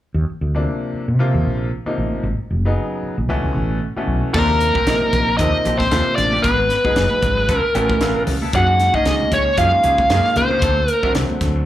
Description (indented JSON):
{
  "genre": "electric jazz fusion",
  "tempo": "115 BPM",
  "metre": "4/4",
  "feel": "swing 56% on 16ths",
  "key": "unclear",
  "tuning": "A4 = 439 Hz",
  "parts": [
    { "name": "woody fretless electric bass", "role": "bass", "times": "0.1-11.7 s", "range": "Gb1 to C3", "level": "-20 LUFS", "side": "equal", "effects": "none" },
    { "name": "bright grand piano", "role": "accompaniment", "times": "0.5-11.7 s", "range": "Bb2 to G5", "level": "-24 LUFS", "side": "left 1 dB", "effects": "slapback echo" },
    { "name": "smooth overdriven lead guitar", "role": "melody", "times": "4.3-11.1 s", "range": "Bb4 to Gb5", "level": "-17 LUFS", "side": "equal", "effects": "slapback echo, plate reverb" },
    { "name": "hollow-body jazz guitar", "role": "second line", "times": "4.3-11.1 s", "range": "Bb3 to Gb4", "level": "-28 LUFS", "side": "left 2 dB", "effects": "plate reverb, slapback echo" },
    { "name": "twangy electric guitar", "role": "stabs", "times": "4.3-11.6 s", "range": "F3 to A4", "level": "-29 LUFS", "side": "left 1 dB", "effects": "wide subtle chorus, plate reverb, slapback echo" },
    { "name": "crisp fusion drum kit", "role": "drums", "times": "4.3-11.5 s", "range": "crash cymbal, hi-hat, kick drum, snare drum", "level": "-24 LUFS", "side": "equal", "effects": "none" },
    { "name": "congas", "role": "percussion", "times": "4.7-11.4 s", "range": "none", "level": "-29 LUFS", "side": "right 4 dB", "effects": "slapback echo" }
  ],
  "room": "light reverb",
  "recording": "live gig heard through the venue's PA, club reverb",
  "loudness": "-15 LUFS",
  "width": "side -13 dB against mid",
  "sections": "0.1-4.3 A section; 4.3-11.7 B section",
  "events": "grand piano fill 7.5-8.5",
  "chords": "0.1 Ebsus2; 2.2 Abm7; 3.3 Aadd9; 4.3 Ebmaj13; 6.4 Abm7; 7.5 Db7alt; 8.5 Gbmaj9; 10.6 D7"
}